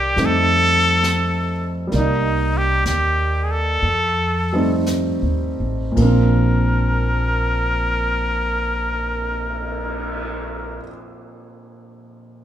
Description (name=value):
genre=jazz ballad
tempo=53-70 BPM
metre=4/4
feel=swing 68% on 8ths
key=Bb major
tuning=A4 = 440 Hz
part: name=trumpet with straight mute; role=melody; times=0.0-10.8 s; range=Eb4 to Bb4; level=-20 LUFS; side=equal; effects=none
part: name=warm upright piano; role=accompaniment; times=0.0-12.4 s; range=Bb2 to D5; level=-24 LUFS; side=right 1 dB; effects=none
part: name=upright bass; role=bass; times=0.0-10.8 s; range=A1 to F2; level=-21 LUFS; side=equal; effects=none
part: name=jazz brush drum kit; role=drums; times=0.2-10.2 s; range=brushed snare drum, cymbal swell, hi-hat, kick drum, ride cymbal, snare drum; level=-31 LUFS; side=left 1 dB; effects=none
room=moderate recital hall reverb, RT60 1.4 s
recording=recorded in a church or concert hall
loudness=-17 LUFS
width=side -10 dB against mid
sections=0.0-6.0 A section; 6.0-10.4 B section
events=slowing down 0.0-6.0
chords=0.2 F7; 1.9 Cm7; 3.8 F7; 6.0 Bbadd9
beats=0.17 1.04 | 1.93 2.86 3.83 4.86 | 5.96 7.09 8.21 9.32